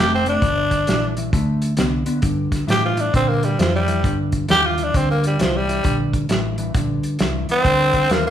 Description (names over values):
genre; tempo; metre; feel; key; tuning
electric blues shuffle; 133 BPM; 4/4; swing 64% on 8ths; G minor; A4 = 440 Hz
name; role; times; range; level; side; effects
growling tenor saxophone; melody; 0.0-8.3 s; F3 to G4; -19 LUFS; equal; none
mellow electric guitar; riff; 0.0-8.3 s; G2 to B3; -23 LUFS; left 2 dB; none
hollow-body short-scale fingered electric bass; bass; 0.0-8.3 s; F1 to Bb2; -24 LUFS; right 1 dB; none
warm soul drum kit; drums; 0.3-8.2 s; hi-hat, kick drum, snare drum; -22 LUFS; equal; none
room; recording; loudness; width
moderate large studio reverb, RT60 0.9 s; band playing live in one room; -16 LUFS; side -10 dB against mid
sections
0.0-2.2 A section; 2.2-8.3 B section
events
tenor saxophone solo 2.2-8.3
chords
0.4 Gm; 1.3 D5; 2.2 Gm